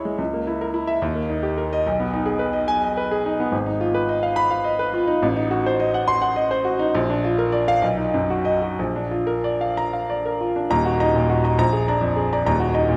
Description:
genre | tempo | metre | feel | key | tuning
classical, romantic character piece for solo piano | 61-74 BPM (dotted quarters) | 6/8 | rubato | G# minor, Eb minor from 3.5 s | A4 = 440 Hz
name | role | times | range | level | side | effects
clear baby grand piano | solo | 0.0-13.0 s | Eb1 to C#6 | -22 LUFS | equal | none
room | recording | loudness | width
moderate scoring stage reverb, RT60 2.0 s | none | -21 LUFS | mono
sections
0.0-10.7 A section; 10.7-13.0 B section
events
none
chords
0.2 A#dim/C#; 1.0 D#; 1.9 G#m/B; 3.5 Fm7b5/Ab; 5.2 Adim7; 6.9 Bb; 7.8 B; 8.8 Bb; 10.7 Ebm; 11.6 Bb7; 12.5 Ebm

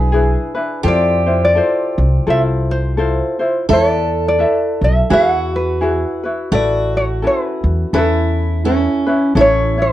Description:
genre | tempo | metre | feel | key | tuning
Hawaiian | 85 BPM | 4/4 | swing 59% on 8ths | unclear | A4 = 442 Hz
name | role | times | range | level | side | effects
tenor ukulele | melody | 0.0-9.9 s | A4 to F#5 | -17 LUFS | equal | none
picked steel-string acoustic guitar | second line | 0.0-9.9 s | C#4 to A4 | -21 LUFS | right 3 dB | none
ukulele | accompaniment | 0.0-9.9 s | C#4 to E5 | -19 LUFS | left 2 dB | none
upright bass | bass | 0.0-9.9 s | A1 to F2 | -17 LUFS | equal | none
room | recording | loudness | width
moderate studio reverb, RT60 0.6 s | worn, warbling old tape, cassette tape, warbly pitch drift | -13 LUFS | side -13 dB against mid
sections
0.0-9.4 A section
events
none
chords
0.0 E7; 0.8 Fmaj7; 3.7 Esus4; 5.1 Eadd9; 6.5 Aadd9; 9.4 A

